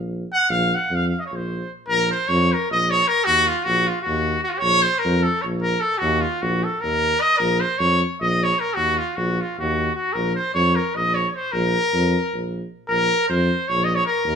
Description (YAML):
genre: balkan folk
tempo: 305 BPM (eighths)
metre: 7/8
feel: straight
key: Bb harmonic minor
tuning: A4 = 441 Hz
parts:
  - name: warm tuba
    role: bass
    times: 0.0-14.4 s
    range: Bb1 to F2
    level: -24 LUFS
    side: equal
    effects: none
  - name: clear trumpet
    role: melody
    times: 0.3-14.4 s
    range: F4 to Gb5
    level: -19 LUFS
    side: equal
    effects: none
room: moderate large studio reverb, RT60 0.9 s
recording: band playing live in one room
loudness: -18 LUFS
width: side -7 dB against mid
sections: 0.0-1.9 A section; 1.9-12.9 B section; 12.9-14.4 B section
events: trumpet solo 0.0-1.9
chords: 0.0 Bb5; 3.3 Ebm; 4.6 Bb5; 6.0 Eb5; 7.4 Bb5; 8.8 Ebm; 10.1 Bb5